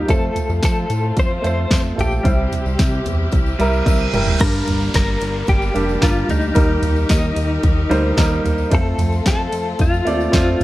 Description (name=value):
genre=piano-driven pop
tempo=111 BPM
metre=4/4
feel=straight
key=G minor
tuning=A4 = 440 Hz
part: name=direct-recorded clean electric guitar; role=melody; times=0.0-10.6 s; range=Eb4 to C5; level=-24 LUFS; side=left 2 dB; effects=tremolo
part: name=clear upright piano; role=accompaniment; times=0.0-10.6 s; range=G2 to G5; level=-22 LUFS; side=right 1 dB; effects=none
part: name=warm studio string section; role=sustained chords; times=0.0-10.6 s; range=C3 to Bb4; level=-30 LUFS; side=left 1 dB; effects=none
part: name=chorused synth bass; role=bass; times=0.0-10.6 s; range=F1 to A2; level=-21 LUFS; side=equal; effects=none
part: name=house drum kit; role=drums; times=0.1-10.6 s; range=crash cymbal, hi-hat, kick drum, ride cymbal, snare drum, toms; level=-18 LUFS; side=equal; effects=none
part: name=tambourine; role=percussion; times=0.1-10.6 s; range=none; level=-39 LUFS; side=left 6 dB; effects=none
part: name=reverse cymbal and downlifter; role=sound effects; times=3.5-8.7 s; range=none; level=-30 LUFS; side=right 3 dB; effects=none
room=little or no reverb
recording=dark, warm production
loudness=-15 LUFS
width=side -16 dB against mid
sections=0.0-4.4 A section; 4.4-10.6 B section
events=reverse cymbal 3.5-4.4; upright piano fill 3.6-4.4; drum fill 3.9-4.4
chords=0.1 F; 2.2 C; 4.4 Gm; 6.6 Eb; 8.7 F